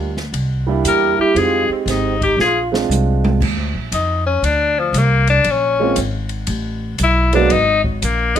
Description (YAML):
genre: jazz, small-group swing and bop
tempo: 117 BPM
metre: 4/4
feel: swing 66% on 8ths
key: unclear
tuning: A4 = 440 Hz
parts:
  - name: warm grand piano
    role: accompaniment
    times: 0.0-8.4 s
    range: Gb3 to G4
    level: -19 LUFS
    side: right 7 dB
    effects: none
  - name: upright bass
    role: bass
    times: 0.0-8.4 s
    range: Ab1 to F2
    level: -19 LUFS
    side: equal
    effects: none
  - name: open jazz drum kit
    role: drums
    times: 0.2-8.4 s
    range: crash cymbal, hi-hat, kick drum, ride cymbal, snare drum, toms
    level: -25 LUFS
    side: right 1 dB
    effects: none
  - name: clear tenor saxophone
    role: melody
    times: 0.9-8.4 s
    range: F3 to Bb4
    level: -16 LUFS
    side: left 4 dB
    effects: none
  - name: trombone with plunger mute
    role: second line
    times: 0.9-2.7 s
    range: Ab3 to G4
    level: -21 LUFS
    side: right 6 dB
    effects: none
room: light reverb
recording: none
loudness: -14 LUFS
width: side -9 dB against mid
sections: 0.0-3.4 A section; 3.4-8.4 B section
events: drum fill 2.4-3.4; tenor saxophone solo 3.4-8.4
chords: 0.3 C7; 1.4 Fm7; 2.4 Bb9; 3.4 N.C.; 5.5 Bbm7; 6.5 Asus2; 7.5 Absus2